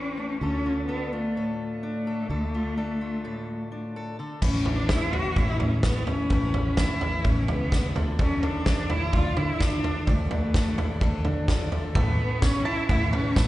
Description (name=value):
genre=indie folk with a building arrangement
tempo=127 BPM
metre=4/4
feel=straight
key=A major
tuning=A4 = 445 Hz
part: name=warm cello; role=melody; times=0.0-13.5 s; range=A3 to F#4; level=-29 LUFS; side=equal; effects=slapback echo
part: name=fingerpicked steel-string acoustic guitar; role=accompaniment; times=0.0-12.0 s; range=E2 to B4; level=-34 LUFS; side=left 2 dB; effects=slapback echo
part: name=fingered electric bass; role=bass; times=0.0-13.5 s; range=A1 to D3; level=-30 LUFS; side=equal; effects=none
part: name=picked twelve-string acoustic guitar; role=accompaniment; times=4.4-13.5 s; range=A2 to E4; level=-39 LUFS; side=left 5 dB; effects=slapback echo
part: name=natural country drum kit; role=drums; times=4.4-13.5 s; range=crash cymbal, kick drum, snare drum, toms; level=-25 LUFS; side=equal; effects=none
part: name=clear upright piano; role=accompaniment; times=8.2-13.5 s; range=A1 to B4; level=-41 LUFS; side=right 3 dB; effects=none
part: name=warm chamber string section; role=sustained chords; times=12.0-13.5 s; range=B4 to C#6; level=-41 LUFS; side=left 2 dB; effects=none
part: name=bluegrass banjo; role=arpeggios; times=12.0-13.5 s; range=A4 to A5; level=-35 LUFS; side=right 5 dB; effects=slapback echo
part: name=tambourine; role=percussion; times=12.4-13.5 s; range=none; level=-40 LUFS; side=left 2 dB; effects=none
room=studio ambience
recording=live gig heard through the venue's PA, recital hall reverb, nothing above 10.6 kHz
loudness=-23 LUFS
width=side -16 dB against mid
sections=0.0-4.4 A section; 4.4-12.0 B section; 12.0-13.5 C section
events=none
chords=0.4 Dm; 4.4 Aadd9; 8.0 Dmadd9; 12.0 Aadd9